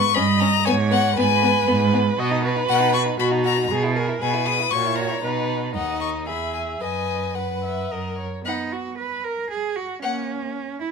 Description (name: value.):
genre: quick classical-period movement for string quartet.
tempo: 116 BPM.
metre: 3/4.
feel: rubato.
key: B major.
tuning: A4 = 442 Hz.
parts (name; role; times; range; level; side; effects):
bright violin; melody; 0.0-10.3 s; F#5 to D#6; -23 LUFS; left 11 dB; none.
warm viola; accompaniment; 0.0-10.5 s; A#3 to E5; -26 LUFS; right 3 dB; none.
clear cello; bass; 0.0-10.9 s; D#2 to B4; -24 LUFS; right 4 dB; none.
rich violin; second line; 0.2-10.3 s; B3 to F#5; -27 LUFS; left 4 dB; none.
room: light reverb.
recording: minimal, uncompressed stereo recording.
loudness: -20 LUFS.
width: side -5 dB against mid.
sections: 0.0-8.5 A section; 8.5-10.9 B section.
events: none.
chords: 0.1 D#7/G; 0.7 G#m; 2.2 B; 3.7 E/B; 4.7 F#7/A#; 5.2 B; 6.3 E; 6.8 B/F#; 7.9 F#; 8.5 B; 10.0 F#/A#.